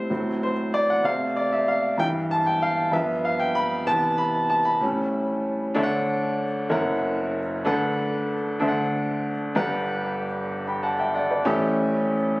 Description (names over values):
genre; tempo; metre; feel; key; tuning
gospel; 63 BPM (dotted quarters); 6/8; straight; D major from 5.8 s; A4 = 435 Hz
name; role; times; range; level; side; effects
clear baby grand piano; solo; 0.0-12.4 s; F#1 to B5; -22 LUFS; equal; tape echo
room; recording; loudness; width
light reverb; recorded on a phone in the room, club reverb; -22 LUFS; side -21 dB against mid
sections
0.0-5.8 A section; 5.8-12.4 B section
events
grand piano solo 0.0-5.8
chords
0.1 Am6; 1.0 Dm9/C; 2.0 Fmaj9/G; 2.9 G7; 3.9 Cmaj7; 4.8 A7; 5.8 Dmaj7; 6.7 F#7; 7.7 Bm7/D; 8.6 D7; 9.6 Gmaj7; 11.5 A7